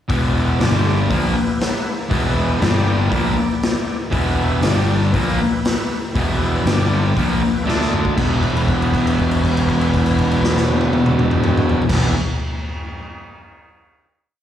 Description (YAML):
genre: blues rock power trio and southern rock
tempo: 119 BPM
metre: 4/4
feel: straight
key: E minor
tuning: A4 = 440 Hz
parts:
  - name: overdriven tonewheel organ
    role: sustained chords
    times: 0.1-12.1 s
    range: G3 to D5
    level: -27 LUFS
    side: right 2 dB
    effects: slow rotary speaker, chorus vibrato
  - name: fuzz guitar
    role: riff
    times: 0.1-12.1 s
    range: E2 to D4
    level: -19 LUFS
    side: left 1 dB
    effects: distortion, slapback echo
  - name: fuzz picked electric bass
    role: bass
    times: 0.1-12.1 s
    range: E1 to D2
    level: -20 LUFS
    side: equal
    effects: overdrive
  - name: raw garage drum kit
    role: drums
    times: 0.1-12.0 s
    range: crash cymbal, hi-hat, kick drum, snare drum, toms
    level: -21 LUFS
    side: left 1 dB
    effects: none
room: little or no reverb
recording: live gig heard through the venue's PA, recital hall reverb, small room reverb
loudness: -15 LUFS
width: side -10 dB against mid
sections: 0.1-8.2 riff; 8.2-12.2 final chord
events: drum fill 7.7-8.2; held note 8.2-11.9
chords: 0.1 Em; 0.6 G5; 1.1 Em; 2.6 G5; 3.1 Em; 4.6 G5; 5.1 Em; 6.7 G5; 7.2 Em; 7.7 D5; 8.2 Em